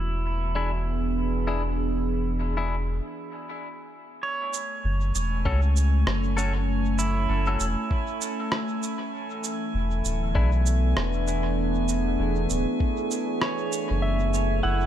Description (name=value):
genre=ambient dub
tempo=98 BPM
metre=4/4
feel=swing 59% on 16ths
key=F# minor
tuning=A4 = 442 Hz
part: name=warbly tape-like pad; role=sustained chords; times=0.0-14.9 s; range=C#3 to G#4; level=-30 LUFS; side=right 2 dB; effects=chorus, built-in reverb
part: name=pedal steel guitar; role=arpeggios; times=0.0-14.9 s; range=E4 to C#5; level=-35 LUFS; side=right 3 dB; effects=dub echo
part: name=soft dub sub bass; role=bass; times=0.0-14.9 s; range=D1 to C#2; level=-25 LUFS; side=equal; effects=none
part: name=clean electric guitar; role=stabs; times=0.6-10.5 s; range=C#4 to A4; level=-35 LUFS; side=left 3 dB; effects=spring reverb, dub echo
part: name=drifting glass-harmonics texture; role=texture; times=4.7-14.9 s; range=A3 to G#5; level=-33 LUFS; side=left 1 dB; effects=chorus, built-in reverb
part: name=electronic shaker and rim click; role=drums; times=4.5-14.5 s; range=none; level=-31 LUFS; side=right 2 dB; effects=studio reverb, dub echo
part: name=electronic kick drum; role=drums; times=5.5-12.9 s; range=none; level=-26 LUFS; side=equal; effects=studio reverb
part: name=clean lap steel guitar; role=melody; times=14.0-14.9 s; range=E5 to F#5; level=-29 LUFS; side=left 2 dB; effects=none
room=digital ambience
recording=none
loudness=-23 LUFS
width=side -10 dB against mid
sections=0.0-4.2 A section; 4.2-14.9 B section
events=break 3.0-4.2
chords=0.0 E7; 4.2 F#m; 9.1 E7; 14.0 F#m